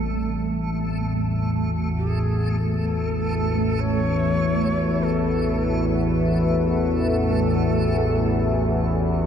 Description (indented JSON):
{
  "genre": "dark ambient drone",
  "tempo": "free time",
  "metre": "none",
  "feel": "none",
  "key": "unclear",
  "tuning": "A4 = 441 Hz",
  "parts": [
    { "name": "breathy mellow shakuhachi", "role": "melody", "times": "0.0-9.3 s", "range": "G#4 to C#5", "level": "-30 LUFS", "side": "left 2 dB", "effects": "tape echo" },
    { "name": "dark analog pad", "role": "sustained chords", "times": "0.0-9.3 s", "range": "G3 to E5", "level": "-30 LUFS", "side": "left 2 dB", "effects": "chorus" },
    { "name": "analog drone", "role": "drone", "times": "0.0-9.3 s", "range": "A1 to E2", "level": "-22 LUFS", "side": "equal", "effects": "chorus" },
    { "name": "backwards swelling texture", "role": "texture", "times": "0.0-9.3 s", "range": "A3", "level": "-28 LUFS", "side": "right 4 dB", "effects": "built-in reverb" }
  ],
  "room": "wet cathedral reverb, RT60 6.1 s",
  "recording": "dark, warm production",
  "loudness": "-20 LUFS",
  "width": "side -8 dB against mid",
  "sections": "0.0-9.3 A section",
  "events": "none",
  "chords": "0.0 Am; 1.4 F#m7"
}